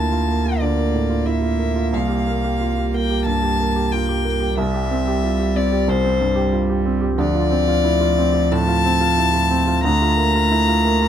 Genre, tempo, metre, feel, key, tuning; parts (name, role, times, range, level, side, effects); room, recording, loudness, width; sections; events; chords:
neoclassical piano and strings; 91 BPM; 4/4; rubato; A4 = 440 Hz
rich violin; melody; 0.0-11.1 s; C5 to Bb5; -21 LUFS; left 5 dB
warm cello; second line; 0.0-11.1 s; F3 to Bb3; -23 LUFS; right 4 dB
warm grand piano; accompaniment; 0.0-11.1 s; C2 to G4; -22 LUFS; right 3 dB
saturated sub bass; bass; 0.0-11.1 s; C2 to D2; -23 LUFS; left 1 dB
little or no reverb; close, detailed microphones; -16 LUFS; side -9 dB against mid
0.0-11.1 A section
0.0 Bbmaj7/D; 1.9 C7sus4; 4.6 C; 7.2 Dm7; 9.9 Bbmaj7/D